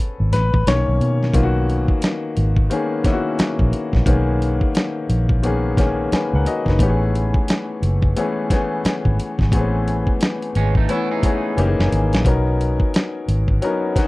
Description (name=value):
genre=R&B, neo-soul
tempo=88 BPM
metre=4/4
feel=swing 62% on 16ths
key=B major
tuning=A4 = 441 Hz
part: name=clear baby grand piano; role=accompaniment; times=0.0-14.1 s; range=D#3 to G#5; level=-21 LUFS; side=left 3 dB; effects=none
part: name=vintage muted fingered electric bass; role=bass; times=0.2-13.6 s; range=F#1 to B2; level=-19 LUFS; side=equal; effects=none
part: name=dusty soul sampler-style drum kit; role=drums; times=0.3-14.1 s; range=hi-hat, kick drum, snare drum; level=-19 LUFS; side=equal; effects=none
part: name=electric guitar at the edge of break-up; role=second line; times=10.6-11.6 s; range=G#3 to G#4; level=-26 LUFS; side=right 7 dB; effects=none
room=little or no reverb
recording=dry, close 1970s-style studio recording, lossy compression artefacts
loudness=-16 LUFS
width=side -20 dB against mid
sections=0.0-1.3 A section; 1.3-14.1 B section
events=grand piano solo 0.0-1.3; drum fill 11.6-12.2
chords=0.0 Amaj9; 0.7 Bmaj9; 6.8 Amaj9; 11.6 F#13; 12.2 Bmaj9